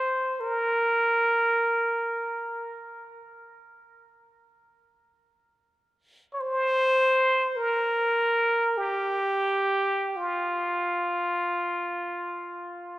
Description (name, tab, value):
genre	world meditative, free-time meditation music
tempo	free time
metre	none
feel	none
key	unclear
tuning	A4 = 440 Hz
part	trumpet with plunger mute	solo	0.0-13.0 s	F4 to Db5	-24 LUFS	equal	dub echo
room	wet spring reverb, RT60 1.8 s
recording	echo-heavy mix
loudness	-23 LUFS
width	side -16 dB against mid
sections	0.0-13.0 A section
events	none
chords	none